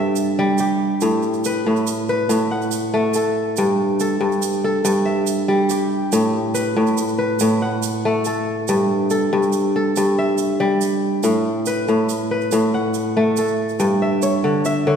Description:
west african traditional, West African string and xylophone music; 94 BPM (dotted quarters); 12/8; straight; A4 = 441 Hz
kora; arpeggios; 0.0-15.0 s; G2 to F#5; -17 LUFS; equal
egg shaker; percussion; 0.2-14.8 s; -31 LUFS; right 9 dB
wet church reverb, RT60 2.6 s; recorded in a church or concert hall; -17 LUFS; side -7 dB against mid
0.0-13.8 A section; 13.8-15.0 B section
0.0 Emadd11/G; 1.0 F#madd11/A; 3.6 Emadd11/G; 6.1 F#madd11/A; 8.7 Emadd11/G; 11.2 F#madd11/A; 13.8 G5

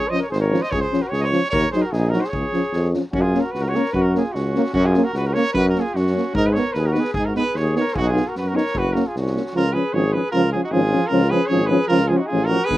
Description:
balkan folk, Balkan brass band; 150 BPM; 2/4; straight; Db major, F# major from 3.1 s; A4 = 440 Hz
warm trumpet; melody; 0.0-12.8 s; F#4 to Eb5; -24 LUFS; right 2 dB
mellow flugelhorn; second line; 0.0-12.8 s; C#4 to C5; -27 LUFS; left 2 dB
dark trombone; accompaniment; 0.1-12.8 s; D#3 to B3; -23 LUFS; right 4 dB
mellow euphonium; accompaniment; 0.1-12.8 s; B3 to Eb4; -23 LUFS; left 4 dB
street-band drum kit; percussion; 0.1-9.5, 12.7-12.8 s; kick drum, snare drum; -33 LUFS; equal
warm tuba; bass; 0.3-12.8 s; F#1 to G#2; -21 LUFS; equal
little or no reverb; rough home demo mix; -17 LUFS; side -15 dB against mid
0.0-3.1 A section; 3.1-9.5 B section; 9.5-12.8 C section
0.0 Db; 1.5 Ebm; 2.3 Db; 3.1 F#; 6.3 G#m; 7.9 B; 8.7 F#; 9.5 C#

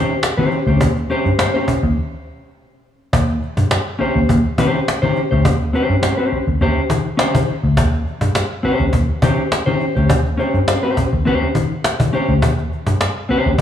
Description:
funk; 103 BPM; 4/4; straight; Eb mixolydian; A4 = 440 Hz
mellow electric guitar; accompaniment; 0.0-13.5 s; Db4 to C5; -19 LUFS; left 2 dB; slapback echo
vintage muted picked electric bass; bass; 0.0-13.6 s; D2 to Eb3; -16 LUFS; equal
cajon; drums; 0.1-13.6 s; -21 LUFS; equal; slapback echo
moderate plate reverb, RT60 2.4 s; live gig heard through the venue's PA, club reverb, studio reverb; -15 LUFS; side -10 dB against mid
0.0-3.1 A section; 3.1-13.6 A section
break 2.0-3.1
0.0 Eb6

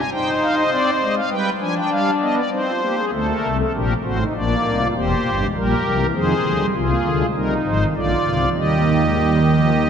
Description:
classical, baroque-style 4-part fugue for pipe organ; 99 BPM; 3/4; straight; Eb major from 6.7 s; A4 = 439 Hz
pipe organ, strings celeste; solo; 0.0-9.9 s; E1 to Ab5; -17 LUFS; equal
wet cathedral reverb, RT60 4.3 s; dark, warm production; -17 LUFS; side -7 dB against mid
0.0-3.1 A section; 3.1-9.9 B section
0.0 Cm; 0.7 Dm7b5/C; 1.3 G7; 2.5 Cm; 3.1 D7(no3); 4.4 Bbadd9; 5.0 C7/E; 6.1 Fm; 6.7 Ab/C; 7.3 Fm7/C; 8.0 Bb; 8.6 Eb

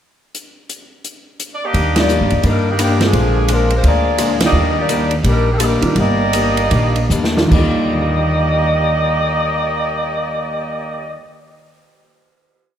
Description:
jazz, big band swing; 145-172 BPM; 4/4; swing 63% on 8ths; Eb major; A4 = 440 Hz
swinging big-band drum kit; drums; 0.3-7.6 s; crash cymbal, hi-hat, kick drum, ride cymbal, rim click, snare drum; -21 LUFS; equal
warm saxophone section; melody; 1.5-11.2 s; Eb3 to Eb5; -18 LUFS; equal
picked acoustic archtop guitar; accompaniment; 1.7-11.2 s; Bb2 to D4; -23 LUFS; left 3 dB
upright bass; bass; 1.7-11.1 s; G1 to G2; -18 LUFS; equal
warm grand piano; accompaniment; 2.0-11.2 s; Eb2 to F4; -22 LUFS; right 2 dB
moderate scoring stage reverb, RT60 2.1 s; -13 LUFS; side -10 dB against mid
0.3-1.7 pickup bar; 1.7-7.5 A section; 7.5-10.8 final chord
band accent 1.9, 4.4; slowing down 4.5-7.5; drum fill 7.1-7.5
0.3 N.C.; 1.7 Ebmaj7; 3.1 Bb7; 4.5 Ebmaj7

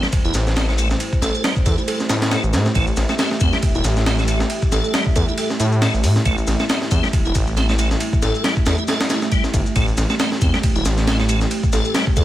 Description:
breakbeat, breaks; 137 BPM; 4/4; swing 56% on 16ths; A minor; A4 = 436 Hz
dark analog pad; sustained chords; 0.0-12.2 s; A3 to E5; -26 LUFS; right 2 dB; chorus, sidechain pumping
tonewheel organ; riff; 0.0-12.2 s; G3 to A4; -25 LUFS; equal; overdrive, chorus vibrato, slow rotary speaker, vintage 12-bit sampler grit, tape echo
breakbeat sampler-style drum kit; drums; 0.0-12.2 s; hi-hat, kick drum, ride cymbal, snare drum; -20 LUFS; equal
shaker; drums; 0.0-12.2 s; -32 LUFS; left 4 dB
detuned saw bass; bass; 0.1-12.2 s; E1 to A2; -20 LUFS; equal
light reverb; -16 LUFS; side -14 dB against mid
0.0-12.2 A section
0.0 Am7

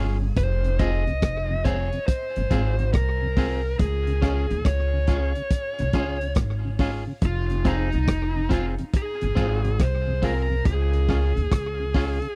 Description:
roots reggae; 70 BPM; 4/4; swing 64% on 16ths; F minor; A4 = 440 Hz
electric guitar at the edge of break-up; accompaniment; 0.0-12.2 s; C4 to Ab4; -34 LUFS; equal; tremolo, tape echo
mellow tonewheel organ; accompaniment; 0.0-12.3 s; F2 to F4; -36 LUFS; equal; overdrive, chorus vibrato, slow rotary speaker, slapback echo
upright bass; bass; 0.0-12.2 s; F1 to Eb2; -27 LUFS; equal
bluesy overdriven lead guitar; melody; 0.4-12.4 s; Eb4 to Eb5; -32 LUFS; equal; distortion, tape echo
crunchy breakbeat drum kit; drums; 0.4-12.4 s; hi-hat, kick drum, rim click; -25 LUFS; equal
little or no reverb; dry, close 1970s-style studio recording; -24 LUFS; mono
0.0-12.4 A section
0.4 Fm; 3.8 Db; 7.2 Fm; 10.7 Db

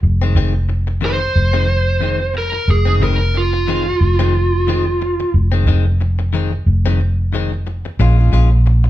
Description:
straight-eighth soul blues; 90 BPM; 4/4; swing 56% on 16ths; F minor; A4 = 440 Hz
vintage muted fingered electric bass; bass; 0.0-8.9 s; F1 to Bb1; -14 LUFS; equal
direct-recorded clean electric guitar; stabs; 0.2-8.9 s; F2 to F4; -23 LUFS; left 6 dB
lead guitar through a small cranked amp; melody; 1.1-5.3 s; F4 to C5; -18 LUFS; right 2 dB; overdrive
light reverb; band playing live in one room; -13 LUFS; side -14 dB against mid
0.0-8.9 A section
0.0 Fm7; 8.0 Bbm7

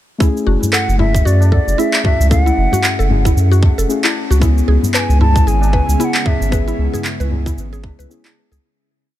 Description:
organic downtempo; 114 BPM; 4/4; swing 58% on 16ths; F# minor; A4 = 440 Hz
muted felt-like synth keys; accompaniment; 0.2-8.6 s; A3 to G#4; -22 LUFS; left 4 dB; chorus, sidechain pumping, tape echo
mallet-like synth pluck; arpeggios; 0.2-8.6 s; E4 to B4; -24 LUFS; equal; chorus, tape echo
electronic cabasa and handclaps; drums; 0.2-8.6 s; -20 LUFS; right 1 dB
electronic kick drum; drums; 0.2-8.0 s; -15 LUFS; equal
round analog bass; bass; 0.5-8.6 s; F#1 to F#2; -14 LUFS; equal; tube saturation
tabla; percussion; 0.5-8.3 s; -24 LUFS; left 1 dB
hollow bansuri; melody; 0.7-6.8 s; D5 to A5; -22 LUFS; right 1 dB; tape echo
ethereal airy pad; sustained chords; 4.9-8.6 s; C#3 to E4; -26 LUFS; equal; ensemble chorus, built-in reverb, sidechain pumping
little or no reverb; -12 LUFS; side -13 dB against mid
0.2-8.6 groove
fade-out 5.8-8.6
0.2 F#m7; 4.4 C#m7

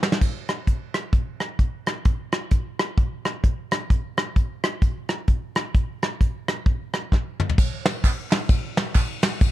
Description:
gospel; 130 BPM; 4/4; swing 60% on 8ths
soft brush drum kit; drums; 0.0-9.5 s; crash cymbal, hi-hat, kick drum, ride cymbal, rim click, snare drum, toms; -21 LUFS; equal
tambourine and handclaps; percussion; 0.0-0.1, 7.6-9.5 s; -34 LUFS; right 4 dB
little or no reverb; dark, warm production; -21 LUFS; side -15 dB against mid
0.2-7.6 A section; 7.6-9.5 B section
drum fill 0.0, 7.1-7.6

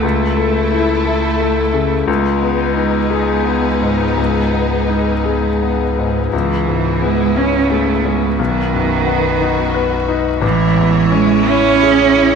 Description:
neoclassical piano and strings; 58 BPM (dotted quarters); 6/8; rubato; C# minor; A4 = 441 Hz
rich cello; second line; 0.0-12.4 s; D#3 to C#4; -17 LUFS; right 10 dB; tape echo
clear grand piano; accompaniment; 0.0-12.4 s; A1 to B4; -16 LUFS; left 8 dB
rich studio string section; sustained chords; 0.0-12.4 s; G#3 to C#5; -23 LUFS; equal
pure sine sub bass; bass; 0.0-12.4 s; A1 to C#2; -23 LUFS; right 1 dB
moderate echo chamber reverb, RT60 2.0 s; 1960s-style stereo with parts hard left and right; -13 LUFS; side -6 dB against mid
0.0-6.3 A section; 6.3-12.4 B section
0.0 A/C#; 2.1 G#m/C#; 6.3 C#m7; 8.4 B; 10.4 Amaj7

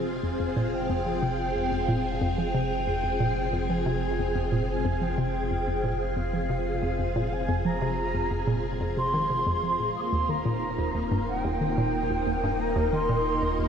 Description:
ambient, sequencer-driven space music; 91 BPM; 4/4; straight; F minor; A4 = 440 Hz
string machine, full ensemble; sustained chords; 0.0-13.7 s; Bb3 to F5; -29 LUFS; equal; phaser, ensemble chorus, shimmer reverb
warm sub bass; bass; 0.0-13.7 s; Eb1 to F1; -34 LUFS; equal
hollow square pluck; riff; 0.2-13.7 s; Eb2 to F3; -29 LUFS; equal; chorus, ping-pong delay
mellow wooden flute; melody; 0.4-13.7 s; F5 to Eb6; -31 LUFS; right 1 dB; shimmer reverb, ping-pong delay
wet lush hall reverb, RT60 2.8 s; dreamy mix soaked in reverb; -25 LUFS; side -7 dB against mid
0.0-13.7 A section
0.0 Fm; 10.0 Eb

